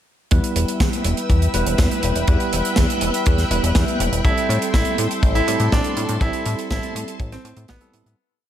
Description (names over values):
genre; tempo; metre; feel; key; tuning
italo disco; 122 BPM; 4/4; straight; E minor; A4 = 437 Hz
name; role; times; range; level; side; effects
string machine, full ensemble; sustained chords; 0.3-8.2 s; A4 to F#6; -26 LUFS; left 1 dB; ensemble chorus
bell-like tine electric piano; stabs; 0.3-8.2 s; G3 to B4; -25 LUFS; right 2 dB; medium stereo tremolo, low-pass filter, ping-pong delay
chorused synth bass; bass; 0.3-8.2 s; E1 to A2; -21 LUFS; equal; tube saturation
kick drum; drums; 0.3-7.8 s; none; -19 LUFS; equal; studio reverb
tight funk drum kit; drums; 0.3-8.2 s; hi-hat, snare drum; -25 LUFS; right 2 dB; studio reverb, gated reverb
bright baby grand piano; melody; 4.2-8.1 s; B3 to E4; -25 LUFS; right 2 dB; ping-pong delay
room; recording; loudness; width
small room ambience; none; -17 LUFS; side -11 dB against mid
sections
0.3-8.2 verse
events
filter sweep on tine electric piano 0.3-8.2; fade-out 5.6-8.2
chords
0.3 Em; 4.2 Am7